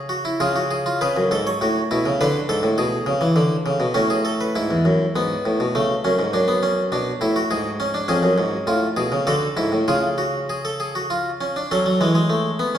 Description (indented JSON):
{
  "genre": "classical, baroque-style 3-part fugue for harpsichord",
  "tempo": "101 BPM",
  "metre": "3/4",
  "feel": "straight",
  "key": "F# minor",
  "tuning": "A4 = 441 Hz",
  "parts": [
    { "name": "harpsichord", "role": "solo", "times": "0.0-12.8 s", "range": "E2 to C#5", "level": "-18 LUFS", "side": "equal", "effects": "none" }
  ],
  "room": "wet recital hall reverb, RT60 1.7 s",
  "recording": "heard from further back in the room",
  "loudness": "-18 LUFS",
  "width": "side -10 dB against mid",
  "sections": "0.0-1.0 A section; 1.0-4.6 B section; 4.6-11.7 A section; 11.7-12.8 B section",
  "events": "none",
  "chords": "0.4 C#; 1.0 F#m; 2.2 D5; 2.8 Bm; 4.0 F#m/A; 4.6 E; 5.7 A/C#; 6.3 Dmaj7/F#; 7.5 G#sus4; 8.1 C#/E#; 9.3 D; 9.9 C#; 11.7 F#m",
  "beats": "0.39 | 1.00 1.60 2.20 | 2.78 3.36 3.95 | 4.55 5.15 5.75 | 6.34 6.92 7.51 | 8.09 8.68 9.27 | 9.88 10.49 11.10 | 11.71 12.31"
}